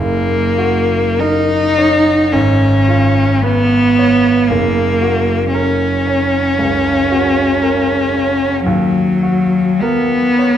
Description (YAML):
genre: classical, romantic duo for cello and grand piano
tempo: 46-58 BPM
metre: 4/4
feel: rubato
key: F# major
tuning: A4 = 437 Hz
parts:
  - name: rich cello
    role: melody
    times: 0.0-10.6 s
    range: F#3 to D#4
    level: -13 LUFS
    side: left 1 dB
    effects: none
  - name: clear concert grand piano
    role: accompaniment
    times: 0.0-10.6 s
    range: F#1 to C#5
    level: -16 LUFS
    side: right 1 dB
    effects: none
room: wet scoring stage reverb, RT60 2.0 s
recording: minimal, uncompressed stereo recording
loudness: -11 LUFS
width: side -10 dB against mid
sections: 0.0-10.6 A section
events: none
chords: 0.0 F#; 2.3 C#7/G#; 4.5 F#; 8.7 D#m